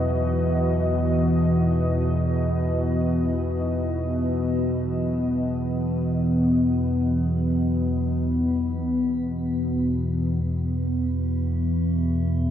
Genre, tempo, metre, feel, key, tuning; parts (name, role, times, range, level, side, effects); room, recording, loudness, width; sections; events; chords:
dark ambient drone; free time; A4 = 445 Hz
deep dark ambient pad; sustained chords; 0.0-12.5 s; E3 to E5; -25 LUFS; equal; chorus, built-in reverb, shimmer reverb
analog drone; drone; 0.0-12.5 s; E2 to B2; -23 LUFS; equal; chorus
metallic inharmonic drone; texture; 11.1-12.5 s; E4; -48 LUFS; right 4 dB; chorus, built-in reverb, phaser, shimmer reverb
wet huge ambient reverb, RT60 8.2 s; dark, warm production; -21 LUFS; side -10 dB against mid
0.0-10.4 A section; 10.4-12.5 B section
0.0 B/E; 10.4 E5